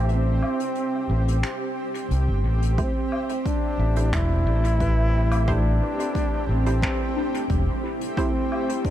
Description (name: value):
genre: ambient dub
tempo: 89 BPM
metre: 4/4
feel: straight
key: A minor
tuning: A4 = 441 Hz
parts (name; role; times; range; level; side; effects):
- mellow trombone; melody; 0.0-8.9 s; C4 to E4; -28 LUFS; equal; vintage 12-bit sampler grit, dub echo
- granular cloud pad; sustained chords; 0.0-8.9 s; A3 to G4; -30 LUFS; right 1 dB; built-in reverb
- soft synth bell; arpeggios; 0.0-8.9 s; D4 to G5; -36 LUFS; left 3 dB; chorus, phaser, dub echo
- overdriven fingered electric bass; bass; 0.0-7.7 s; E1 to C2; -21 LUFS; equal; none
- jazz brush drum kit; drums; 0.1-8.9 s; finger snaps, hi-hat, woodblock; -34 LUFS; left 1 dB; dub echo
- filtered dub chord stab; stabs; 2.8-8.3 s; A3 to C5; -35 LUFS; right 3 dB; none
- electronic kick drum; drums; 2.8-8.9 s; none; -27 LUFS; equal; overdrive
room: small room reverb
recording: none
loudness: -21 LUFS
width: side -12 dB against mid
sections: 0.0-2.8 A section; 2.8-8.9 B section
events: kick drops out 0.1-2.8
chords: 0.0 Am7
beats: | 0.09 0.76 1.44 2.11 | 2.78 3.46 4.13 4.81 | 5.48 6.15 6.83 7.50 | 8.18 8.85